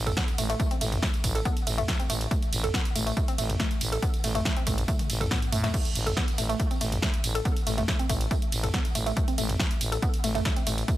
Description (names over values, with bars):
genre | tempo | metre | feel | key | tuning
driving peak-time techno | 140 BPM | 4/4 | straight | A minor | A4 = 441 Hz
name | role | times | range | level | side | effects
growling FM bass | bass | 0.0-10.8 s | A1 to A2 | -30 LUFS | equal | sidechain pumping
woody wave-folded pluck | riff | 0.1-11.0 s | A3 to A4 | -32 LUFS | equal | chorus, sidechain pumping, dub echo
punchy analog drum machine | drums | 0.1-11.0 s | crash cymbal, hi-hat, ride cymbal, snare drum, tambourine, toms | -30 LUFS | right 1 dB | sidechain pumping on hats, sidechain pumping on perc, sidechain pumping on cymbals, sidechain pumping on toms
electronic kick drum | drums | 0.2-11.0 s | none | -28 LUFS | equal | none
room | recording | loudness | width
little or no reverb | dense, heavily limited modern master | -24 LUFS | side -14 dB against mid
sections
0.0-11.0 A section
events
drum fill 4.9-5.7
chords
none